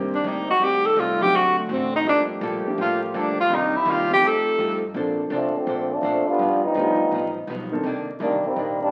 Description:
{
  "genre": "jazz, big band swing",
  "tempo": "166 BPM",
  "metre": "4/4",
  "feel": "swing 66% on 8ths",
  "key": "G minor",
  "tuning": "A4 = 440 Hz",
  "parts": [
    { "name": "archtop guitar, miked and amplified", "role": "accompaniment", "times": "0.0-8.8 s", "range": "G2 to C5", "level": "-32 LUFS", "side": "equal", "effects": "none" },
    { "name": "warm baby grand piano", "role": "accompaniment", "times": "0.0-7.8 s", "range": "Eb3 to A4", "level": "-32 LUFS", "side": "equal", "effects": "none" },
    { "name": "bright trombone section", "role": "sustained chords", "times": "0.0-4.9 s", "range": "C3 to G4", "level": "-33 LUFS", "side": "equal", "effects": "none" },
    { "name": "upright bass", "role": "bass", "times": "0.0-8.9 s", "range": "F1 to G2", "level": "-39 LUFS", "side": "equal", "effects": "none" },
    { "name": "breathy tenor saxophone", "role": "melody", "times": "0.1-4.8 s", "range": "A3 to A4", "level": "-22 LUFS", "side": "equal", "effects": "none" },
    { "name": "muted trombone section", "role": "second line", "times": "5.3-8.9 s", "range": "D3 to F4", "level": "-23 LUFS", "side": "equal", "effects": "none" }
  ],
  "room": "wet large studio reverb, RT60 0.9 s",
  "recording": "very old 78 rpm record, vinyl crackle",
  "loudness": "-22 LUFS",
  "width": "mono",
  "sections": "0.0-5.0 A section; 5.0-8.9 B section",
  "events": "tenor saxophone solo 0.0-5.0; trombone section solo 5.0-8.9",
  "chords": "0.0 Cm7; 0.6 Am7b5; 1.3 D7; 2.1 Gm9; 3.5 Cm7; 4.2 F9; 5.0 Bbmaj9; 6.4 G7b13; 7.8 Cm9"
}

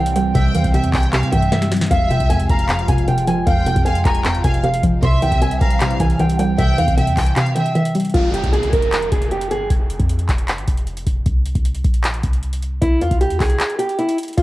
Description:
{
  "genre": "hip hop, trap",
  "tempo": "154 BPM",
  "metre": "4/4",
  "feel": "half-time",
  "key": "unclear",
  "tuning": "A4 = 438 Hz",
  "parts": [
    { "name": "fingerpicked old ladder-braced acoustic guitar", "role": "melody", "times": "0.0-9.7, 12.8-14.4 s", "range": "E4 to C6", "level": "-21 LUFS", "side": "right 1 dB", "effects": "low-pass filter" },
    { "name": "soft round pluck", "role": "accompaniment", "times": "0.0-8.1 s", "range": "F2 to G3", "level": "-20 LUFS", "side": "right 1 dB", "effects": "chorus, low-pass filter" },
    { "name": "warm analog pad", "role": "sustained chords", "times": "0.0-8.1 s", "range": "C3 to F4", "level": "-26 LUFS", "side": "equal", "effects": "chorus, phaser" },
    { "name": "clean 808-style bass", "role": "bass", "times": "0.0-14.4 s", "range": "F1 to C3", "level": "-22 LUFS", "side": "equal", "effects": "none" },
    { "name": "booming analog drum machine", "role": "drums", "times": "0.1-14.4 s", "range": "handclaps, hi-hat, kick drum, snare drum", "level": "-19 LUFS", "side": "equal", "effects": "cassette tape" },
    { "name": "warm studio violin section", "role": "second line", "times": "0.4-7.7 s", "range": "E5 to Ab5", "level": "-26 LUFS", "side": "equal", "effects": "analog delay" },
    { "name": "downlifter", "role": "sound effects", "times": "8.1-11.3 s", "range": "none", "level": "-30 LUFS", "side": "equal", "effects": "none" }
  ],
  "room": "light reverb",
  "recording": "home recording on cassette",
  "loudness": "-15 LUFS",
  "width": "side -17 dB against mid",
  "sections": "0.0-8.1 A section; 8.1-14.4 B section",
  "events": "drum fill 1.5-1.9; break 7.4-8.1, 9.7-12.8, 13.6-14.4",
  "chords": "0.0 C; 1.9 Fm; 5.0 C; 8.1 N.C."
}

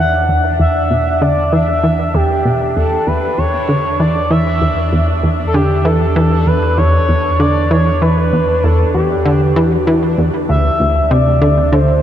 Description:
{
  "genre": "ambient, sequencer-driven space music",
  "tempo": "97 BPM",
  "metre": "4/4",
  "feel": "straight",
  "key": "E dorian",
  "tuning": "A4 = 441 Hz",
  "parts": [
    { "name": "expressive synth lead", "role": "melody", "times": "0.0-12.0 s", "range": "G4 to F#5", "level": "-16 LUFS", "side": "equal", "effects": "chorus, analog delay" },
    { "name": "plucky analog bass", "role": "riff", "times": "0.0-12.0 s", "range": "D2 to E3", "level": "-15 LUFS", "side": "equal", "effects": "analog delay" },
    { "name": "warm sub bass", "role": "bass", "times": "0.0-12.0 s", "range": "D2 to E2", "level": "-18 LUFS", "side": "equal", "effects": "none" },
    { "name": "bubbling stepped-filter texture", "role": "texture", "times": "0.0-12.0 s", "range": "D4", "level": "-26 LUFS", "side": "right 3 dB", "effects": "chorus, built-in reverb" }
  ],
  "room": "wet huge ambient reverb, RT60 7.8 s",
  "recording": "in a vast, echoing space, cassette tape",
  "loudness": "-11 LUFS",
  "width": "side -10 dB against mid",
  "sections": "0.0-12.0 A section",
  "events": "filter sweep on analog synth bass 0.0-12.0",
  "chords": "0.0 Em7; 10.5 D7(no3)"
}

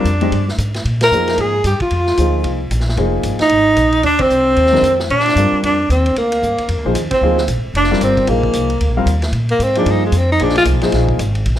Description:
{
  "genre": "modal jazz",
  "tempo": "226 BPM",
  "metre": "4/4",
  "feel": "swing 59% on 8ths",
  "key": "Bb mixolydian",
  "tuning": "A4 = 440 Hz",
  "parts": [
    { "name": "warm tenor saxophone", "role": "melody", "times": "0.0-10.6 s", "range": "Ab3 to Bb4", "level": "-15 LUFS", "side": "equal", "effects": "plate reverb" },
    { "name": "warm grand piano", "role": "accompaniment", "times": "0.0-11.2 s", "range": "Eb3 to F5", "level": "-19 LUFS", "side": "left 2 dB", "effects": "none" },
    { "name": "upright bass", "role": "bass", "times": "0.0-11.6 s", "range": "D1 to Bb2", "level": "-18 LUFS", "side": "equal", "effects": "none" },
    { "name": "vintage drum kit", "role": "drums", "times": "0.1-11.6 s", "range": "hi-hat, kick drum, ride cymbal, snare drum", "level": "-26 LUFS", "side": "equal", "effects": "none" },
    { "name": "mellow alto saxophone", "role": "second line", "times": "1.0-9.1 s", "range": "Bb3 to Bb4", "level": "-21 LUFS", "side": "right 3 dB", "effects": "none" }
  ],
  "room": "moderate club reverb, RT60 0.8 s",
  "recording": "faint mains hum",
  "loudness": "-13 LUFS",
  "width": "side -12 dB against mid",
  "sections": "0.0-9.3 A section; 9.3-11.6 B section",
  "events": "band accent 1.0, 4.2, 7.1; tenor saxophone solo 9.3-11.6",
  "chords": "0.0 G5; 0.9 Bb9sus4; 5.1 Gm; 9.3 Bb9sus4"
}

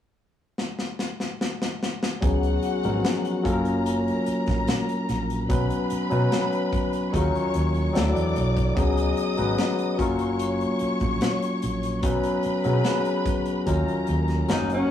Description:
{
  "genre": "lush 1970s-style soul",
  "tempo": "73 BPM",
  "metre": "4/4",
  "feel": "straight",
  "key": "F# major",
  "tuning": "A4 = 440 Hz",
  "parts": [
    { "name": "modern studio drum kit", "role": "drums", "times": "0.6-14.9 s", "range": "hi-hat, kick drum, snare drum", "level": "-28 LUFS", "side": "equal", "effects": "none" },
    { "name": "warm studio string section", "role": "second line", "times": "2.2-14.9 s", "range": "F#4 to D#6", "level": "-32 LUFS", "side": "left 2 dB", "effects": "none" },
    { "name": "barky tine electric piano", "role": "accompaniment", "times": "2.2-14.9 s", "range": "E#3 to B4", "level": "-24 LUFS", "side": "left 2 dB", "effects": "overdrive" },
    { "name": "hollow-body short-scale fingered electric bass", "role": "bass", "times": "2.2-14.8 s", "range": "F#1 to B2", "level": "-26 LUFS", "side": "right 1 dB", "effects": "none" },
    { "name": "breathy tenor saxophone", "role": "melody", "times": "14.5-14.9 s", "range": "C#4 to D#4", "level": "-25 LUFS", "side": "equal", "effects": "none" }
  ],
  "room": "moderate small room reverb, RT60 0.5 s",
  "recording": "rough rehearsal-room recording, tube saturation, small room reverb",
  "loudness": "-22 LUFS",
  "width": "side -10 dB against mid",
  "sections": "0.0-2.2 A section; 2.2-14.9 B section",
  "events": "drum fill 0.6-2.2",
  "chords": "0.0 N.C.; 2.2 C#9sus4; 3.5 F#maj7; 5.5 Badd9; 7.1 D#m9; 8.0 D9; 8.8 C#9sus4; 10.0 F#maj7; 12.0 Badd9; 13.7 D#m9"
}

